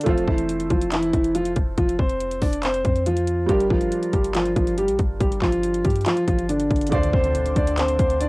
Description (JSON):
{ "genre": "hip hop, trap", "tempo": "140 BPM", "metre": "4/4", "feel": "half-time", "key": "G dorian", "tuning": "A4 = 440 Hz", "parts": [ { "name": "dark concert grand piano", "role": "melody", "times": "0.0-8.3 s", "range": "D3 to D5", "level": "-22 LUFS", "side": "equal", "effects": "cassette tape" }, { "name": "felt-muted upright piano", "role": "accompaniment", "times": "0.0-8.3 s", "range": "D3 to C5", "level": "-31 LUFS", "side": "right 4 dB", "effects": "cassette tape, plate reverb" }, { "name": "trap drum kit", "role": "drums", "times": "0.0-8.3 s", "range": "handclaps, hi-hat, kick drum", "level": "-23 LUFS", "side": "equal", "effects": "none" }, { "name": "clean 808-style bass", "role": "bass", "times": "0.1-8.3 s", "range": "F1 to G2", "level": "-27 LUFS", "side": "equal", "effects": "none" }, { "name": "mellow accordion", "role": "sustained chords", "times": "6.9-8.3 s", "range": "D3 to C5", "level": "-33 LUFS", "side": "left 1 dB", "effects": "cassette tape" }, { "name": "impact", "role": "sound effects", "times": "6.9-8.3 s", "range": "none", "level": "-31 LUFS", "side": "equal", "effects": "none" } ], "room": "light reverb", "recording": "home recording on cassette", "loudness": "-19 LUFS", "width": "side -23 dB against mid", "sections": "0.0-6.9 A section; 6.9-8.3 B section", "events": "impact 6.9-8.3", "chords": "0.1 F; 3.5 Gm7; 6.9 Dm7", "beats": "| 0.06 0.49 0.92 1.35 | 1.78 2.21 2.63 3.06 | 3.49 3.92 4.35 4.78 | 5.21 5.63 6.06 6.49 | 6.92 7.35 7.78 8.21" }